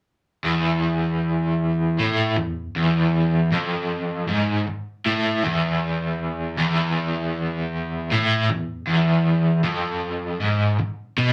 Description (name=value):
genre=rock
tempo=78 BPM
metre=4/4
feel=straight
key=unclear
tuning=A4 = 440 Hz
part: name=overdriven semi-hollow guitar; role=solo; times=0.4-11.3 s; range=E2 to B2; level=-22 LUFS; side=equal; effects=tremolo
room=wet small room reverb, RT60 0.6 s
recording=none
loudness=-23 LUFS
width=mono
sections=0.5-11.3 A section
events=none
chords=none